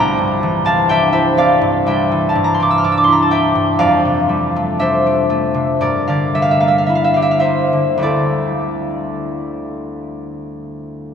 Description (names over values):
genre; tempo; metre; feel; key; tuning
classical, solo harp piece; 50-63 BPM; 4/4; rubato; unclear; A4 = 440 Hz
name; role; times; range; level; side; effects
concert harp; solo; 0.0-11.1 s; C2 to F6; -14 LUFS; equal; none
room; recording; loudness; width
wet cathedral reverb, RT60 5.3 s; none; -13 LUFS; side -7 dB against mid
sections
0.0-11.1 A section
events
none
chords
0.0 C9; 3.8 F69; 5.8 Gm6; 8.0 D9sus4